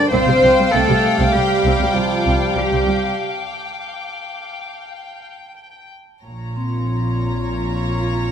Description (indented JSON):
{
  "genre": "cinematic, suspense film score",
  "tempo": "98 BPM",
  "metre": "5/4",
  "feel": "straight",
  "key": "unclear",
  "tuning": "A4 = 438 Hz",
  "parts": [
    { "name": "warm studio violin section", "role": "melody", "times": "0.0-8.3 s", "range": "G5 to Bb5", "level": "-28 LUFS", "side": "left 2 dB", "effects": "none" },
    { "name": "rich studio violin section", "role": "second line", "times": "0.0-8.3 s", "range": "Db5 to F5", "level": "-25 LUFS", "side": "equal", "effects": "none" },
    { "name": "bright trombone section", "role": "sustained chords", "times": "0.0-3.1 s", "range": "C3 to G3", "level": "-24 LUFS", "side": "right 4 dB", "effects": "none" },
    { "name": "mellow French horn section", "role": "sustained chords", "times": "0.0-3.2 s", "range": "F3 to D4", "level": "-21 LUFS", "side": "left 4 dB", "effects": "none" },
    { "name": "warm studio cello section", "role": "bass", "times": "0.0-8.3 s", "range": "Bb2 to D5", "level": "-21 LUFS", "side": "right 2 dB", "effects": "none" },
    { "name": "vibraphone with medium mallets", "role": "texture", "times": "0.0-8.3 s", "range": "C4 to C6", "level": "-32 LUFS", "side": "equal", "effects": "none" },
    { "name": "dark studio viola section", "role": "accompaniment", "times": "0.1-8.3 s", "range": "F3 to F4", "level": "-27 LUFS", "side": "equal", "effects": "none" },
    { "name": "warm studio double bass section", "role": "bass", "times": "0.1-8.3 s", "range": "Bb1 to C2", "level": "-22 LUFS", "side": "right 2 dB", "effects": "none" },
    { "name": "warm studio violin section", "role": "texture", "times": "0.1-5.9 s", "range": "F5 to D6", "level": "-26 LUFS", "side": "left 4 dB", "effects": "none" }
  ],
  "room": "moderate scoring stage reverb, RT60 1.8 s",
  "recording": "none",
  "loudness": "-15 LUFS",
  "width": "side -8 dB against mid",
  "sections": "0.0-6.2 A section; 6.2-8.3 B section",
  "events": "break 3.2-6.2",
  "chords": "0.1 Csus4; 6.2 Bbm"
}